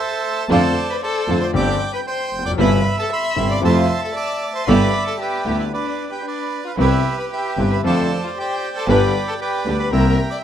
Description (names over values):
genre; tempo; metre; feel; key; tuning
tango; 115 BPM; 4/4; rubato; C major; A4 = 440 Hz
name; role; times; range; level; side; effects
bandoneon; melody; 0.0-10.4 s; G4 to E6; -23 LUFS; right 4 dB; none
warm violin; second line; 0.0-10.4 s; D4 to E5; -26 LUFS; left 6 dB; none
warm concert grand piano; accompaniment; 0.5-10.1 s; G1 to G4; -22 LUFS; left 4 dB; none
warm studio string section; stabs; 0.5-10.1 s; A3 to B4; -24 LUFS; right 4 dB; none
clear double bass; bass; 0.5-10.1 s; F1 to F2; -20 LUFS; right 2 dB; none
room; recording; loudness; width
light reverb, small room ambience; rough home demo mix; -17 LUFS; side -9 dB against mid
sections
0.0-10.4 A section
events
none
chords
0.0 F (rootless); 0.5 Dm7/F; 1.5 Gsus4; 2.6 Cmaj7/G; 3.6 Fmaj7; 4.7 G6; 6.8 Cmaj7; 7.8 F6; 8.9 G; 9.9 C7